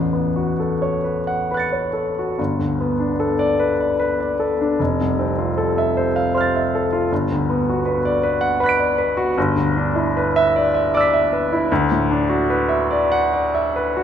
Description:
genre	classical, impressionist solo piano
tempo	64-81 BPM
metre	3/4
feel	rubato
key	G major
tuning	A4 = 439 Hz
part	clear baby grand piano	solo	0.0-14.0 s	F1 to D7	-17 LUFS	equal	none
room	moderate concert hall reverb, RT60 2.4 s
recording	none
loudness	-17 LUFS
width	side -9 dB against mid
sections	0.0-2.4 A section; 2.4-14.0 B section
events	none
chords	0.0 A69; 2.4 Gadd9; 4.8 Fmaj7; 7.1 Gmaj7; 9.4 Em7/G; 11.7 D69

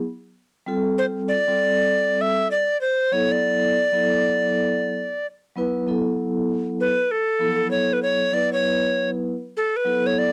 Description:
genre	hip hop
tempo	98 BPM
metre	4/4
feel	swing 64% on 16ths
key	unclear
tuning	A4 = 438 Hz
part	vibraphone with soft mallets	accompaniment	0.7-10.3 s	F3 to B4	-26 LUFS	equal	none
part	breathy bright tenor recorder	melody	1.0-10.3 s	A4 to E5	-22 LUFS	equal	none
room	moderate studio ambience, RT60 0.5 s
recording	dry, gritty hardware recording, cassette tape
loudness	-22 LUFS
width	mono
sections	0.0-5.9 A section; 5.9-10.3 B section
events	recorder solo 5.9-10.3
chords	0.0 N.C.; 0.7 Fadd9; 3.1 Dadd9; 5.9 B9sus4

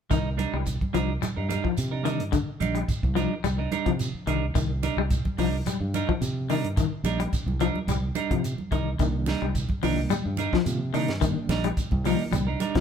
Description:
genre	afrobeat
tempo	108 BPM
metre	4/4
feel	swing 53% on 16ths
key	C minor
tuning	A4 = 441 Hz
part	semi-hollow electric guitar	arpeggios	0.1-12.8 s	D3 to G3	-29 LUFS	left 9 dB	tremolo
part	clean electric guitar	stabs	0.1-12.8 s	G3 to Bb4	-31 LUFS	right 7 dB	none
part	fingered electric bass	bass	0.1-12.8 s	Bb1 to C3	-29 LUFS	right 1 dB	none
part	tight funk drum kit	drums	0.1-12.8 s	hi-hat, kick drum, snare drum	-30 LUFS	equal	none
part	congas	percussion	0.1-12.8 s	none	-35 LUFS	right 4 dB	none
part	shekere	percussion	0.1-12.8 s	none	-36 LUFS	right 4 dB	none
part	overdriven reed electric piano	accompaniment	9.0-12.4 s	Eb3 to F4	-33 LUFS	right 4 dB	fast tremolo
room	moderate large studio reverb, RT60 1.3 s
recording	band playing live in one room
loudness	-24 LUFS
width	side -8 dB against mid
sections	0.1-12.8 A section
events	none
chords	0.1 Cm9

